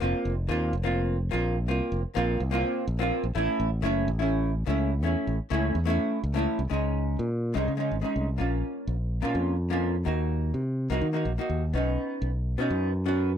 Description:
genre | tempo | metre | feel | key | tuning
progressive instrumental, progressive | 250 BPM (eighths) | 7/8 | straight | Db major | A4 = 443 Hz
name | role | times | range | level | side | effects
archtop guitar, miked and amplified | accompaniment | 0.0-13.3 s | Ab3 to Gb4 | -28 LUFS | equal | double-tracked left and right
modern bright fingered electric bass | bass | 0.0-13.4 s | F1 to Eb3 | -27 LUFS | equal | none
room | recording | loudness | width
light reverb | none | -25 LUFS | side -9 dB against mid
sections
0.0-6.7 A section; 6.7-13.4 B section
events
none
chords
0.0 Fsus4; 3.4 A; 6.7 Dbsus2; 8.4 Bbm; 10.1 Ebm; 11.7 Cbadd9

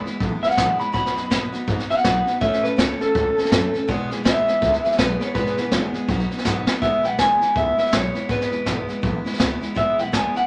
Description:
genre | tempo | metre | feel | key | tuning
rockabilly | 163 BPM | 4/4 | swing 61% on 8ths | E major | A4 = 439 Hz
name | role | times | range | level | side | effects
electric guitar through a small old amp | melody | 0.0-10.5 s | A4 to B5 | -23 LUFS | equal | none
picked steel-string acoustic guitar | accompaniment | 0.0-10.5 s | E2 to A4 | -29 LUFS | equal | none
upright bass | bass | 0.1-10.5 s | E1 to A2 | -32 LUFS | equal | none
vintage brush drum kit | drums | 0.1-10.4 s | hi-hat, kick drum, snare drum | -26 LUFS | equal | none
room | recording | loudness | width
wet small room reverb, RT60 0.5 s | none | -21 LUFS | mono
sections
0.0-6.8 A section; 6.8-10.5 B section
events
clean electric guitar solo 0.0-6.8; drum fill 6.5-6.8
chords
0.0 E; 0.9 B; 2.4 A; 3.9 E; 6.1 B; 6.8 E

